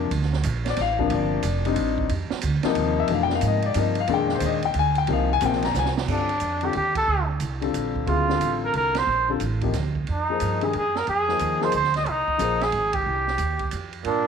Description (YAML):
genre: modal jazz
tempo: 181 BPM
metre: 3/4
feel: swing 65% on 8ths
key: unclear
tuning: A4 = 440 Hz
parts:
  - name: warm concert grand piano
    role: accompaniment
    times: 0.0-12.6 s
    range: Bb2 to Bb5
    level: -25 LUFS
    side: left 8 dB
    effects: none
  - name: upright bass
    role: bass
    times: 0.0-14.3 s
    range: F1 to Ab2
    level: -26 LUFS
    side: right 2 dB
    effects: none
  - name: open jazz drum kit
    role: drums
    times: 0.1-14.2 s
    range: crash cymbal, hi-hat, kick drum, ride cymbal, snare drum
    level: -32 LUFS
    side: right 8 dB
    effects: none
  - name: warm trumpet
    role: melody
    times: 6.1-14.3 s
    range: D4 to Eb5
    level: -23 LUFS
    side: right 2 dB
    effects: none
  - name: warm tenor saxophone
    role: second line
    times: 14.0-14.3 s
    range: Bb2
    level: -23 LUFS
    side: right 13 dB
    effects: none
room: moderate plate reverb, RT60 1.7 s, studio ambience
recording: 1960s-style stereo with parts hard left and right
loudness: -21 LUFS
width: side -6 dB against mid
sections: 0.0-6.1 A section; 6.1-14.3 B section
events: drum fill 5.7-6.1; band accent 6.9, 8.9, 12.9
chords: 0.0 Gm9; 2.1 Fm9; 6.1 Gm9; 10.1 Fm7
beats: | 0.11 0.44 0.77 | 1.10 1.44 1.77 | 2.10 2.43 2.76 | 3.09 3.42 3.75 | 4.08 4.42 4.75 | 5.08 5.41 5.74 | 6.08 6.41 6.74 | 7.08 7.41 7.74 | 8.07 8.41 8.74 | 9.07 9.41 9.74 | 10.07 10.40 10.74 | 11.07 11.40 11.73 | 12.07 12.40 12.73 | 13.06 13.39 13.73 | 14.06